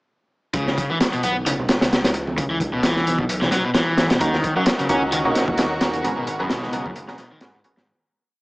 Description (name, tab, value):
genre	breakbeat, breaks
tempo	131 BPM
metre	4/4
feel	swing 55% on 16ths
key	C# dorian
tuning	A4 = 441 Hz
part	overdriven semi-hollow guitar	riff	0.5-7.9 s	F#2 to C#4	-23 LUFS	equal	digital delay
part	dark detuned saw bass	bass	0.5-7.8 s	D#1 to D#2	-30 LUFS	equal	tube saturation
part	crunchy breakbeat drum kit	drums	0.5-7.9 s	hi-hat, kick drum, snare drum	-22 LUFS	equal	none
part	bongos and congas	percussion	0.7-7.9 s	none	-31 LUFS	right 1 dB	none
part	warm chamber string section	sustained chords	4.2-7.9 s	C#3 to A#4	-27 LUFS	equal	vintage 12-bit sampler grit, sidechain pumping
part	orchestra-hit-like synth stab	stabs	4.2-7.8 s	A#3 to A#4	-24 LUFS	right 1 dB	built-in reverb, digital delay
room	light reverb, small room reverb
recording	small speaker sound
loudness	-18 LUFS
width	side -23 dB against mid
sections	0.5-7.9 drop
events	drop 0.5-7.9; fade-out 5.4-7.9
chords	0.5 C#m7; 4.2 D#m7; 6.0 G#m11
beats	| 0.55 1.00 1.46 1.92 | 2.38 2.83 3.29 3.75 | 4.21 4.67 5.12 5.58 | 6.04 6.50 6.96 7.42